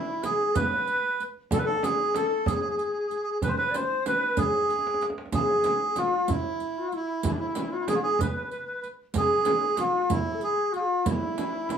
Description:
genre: Persian modal ensemble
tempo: 63 BPM (dotted quarters)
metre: 6/8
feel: straight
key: E dastgah homayun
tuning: A4 = 440 Hz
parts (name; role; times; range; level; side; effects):
- melodica; melody; 0.0-11.8 s; E4 to C5; -27 LUFS; right 2 dB; none
- breathy bright ney; second line; 0.0-11.8 s; D4 to D5; -29 LUFS; left 3 dB; none
- frame drum; percussion; 0.2-11.8 s; none; -32 LUFS; right 3 dB; none
- riq; percussion; 0.2-11.8 s; none; -37 LUFS; right 4 dB; none
- tombak; percussion; 0.2-11.8 s; none; -33 LUFS; right 3 dB; none
room: wet small room reverb, RT60 0.5 s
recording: none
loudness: -24 LUFS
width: side -8 dB against mid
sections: 0.0-11.8 A section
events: drum fill 4.7-5.3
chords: none

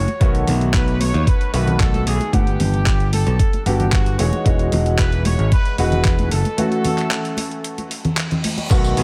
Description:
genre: nu-disco, nu disco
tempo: 113 BPM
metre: 4/4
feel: straight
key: unclear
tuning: A4 = 440 Hz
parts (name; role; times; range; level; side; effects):
- clear trumpet section; melody; 0.0-9.0 s; F#4 to C#5; -29 LUFS; equal; analog delay
- modern bright picked electric bass; bass; 0.0-9.0 s; E1 to D#2; -21 LUFS; equal; sidechain pumping
- dusty soul sampler-style drum kit; drums; 0.1-9.0 s; crash cymbal, handclaps, hi-hat, tambourine; -29 LUFS; equal; none
- congas; percussion; 0.1-8.7 s; none; -27 LUFS; equal; none
- warm grand piano; accompaniment; 0.2-9.0 s; D3 to F#5; -26 LUFS; equal; analog chorus, sidechain pumping, diffuse ambient delay
- electronic kick drum; drums; 0.2-8.8 s; none; -19 LUFS; equal; none
- reverse cymbal; sound effects; 8.0-8.7 s; none; -34 LUFS; equal; none
room: light reverb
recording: none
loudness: -18 LUFS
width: mono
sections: 0.0-8.7 A section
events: break 6.6-8.7; reverse cymbal 8.0-8.7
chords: 0.2 B7; 2.3 Gmaj7; 4.2 Emaj9; 6.3 F#m7

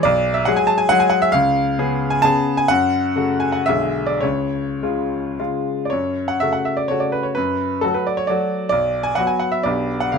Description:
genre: classical, romantic triple-time dance for piano with dotted rhythms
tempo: 99-147 BPM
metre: 3/4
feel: rubato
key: F# minor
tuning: A4 = 440 Hz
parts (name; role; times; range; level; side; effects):
- bright baby grand piano; solo; 0.0-10.2 s; B1 to A5; -17 LUFS; left 1 dB; none
room: light reverb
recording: close, detailed microphones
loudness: -17 LUFS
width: side -5 dB against mid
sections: 0.0-5.9 A section; 5.9-10.2 B section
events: none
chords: 0.0 Bm6; 1.3 C#7; 2.7 F#m; 3.7 G#dim/B; 4.2 C#; 5.9 F#m; 7.4 D/F#; 8.7 B5; 9.7 G/B

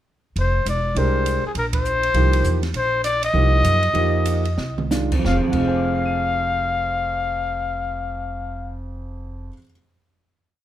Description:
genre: modal jazz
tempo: 173-203 BPM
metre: 4/4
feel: swing 62% on 8ths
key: F dorian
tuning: A4 = 440 Hz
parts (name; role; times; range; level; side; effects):
- mellow trumpet; melody; 0.4-8.8 s; Ab4 to F5; -22 LUFS; left 3 dB; plate reverb
- upright bass; bass; 0.4-9.5 s; E1 to Gb2; -23 LUFS; equal; none
- open jazz drum kit; drums; 0.4-5.6 s; crash cymbal, hi-hat, kick drum, ride cymbal, snare drum, toms; -29 LUFS; right 2 dB; none
- warm upright piano; accompaniment; 1.0-9.7 s; F2 to Eb7; -25 LUFS; right 2 dB; none
room: moderate studio reverb, RT60 0.6 s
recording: none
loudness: -18 LUFS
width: side -12 dB against mid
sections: 0.4-5.3 A section; 5.3-8.0 final chord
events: band accent 1.7; slowing down 2.7-5.3; drum fill 4.6-4.9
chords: 0.4 F9sus4; 5.3 Fm

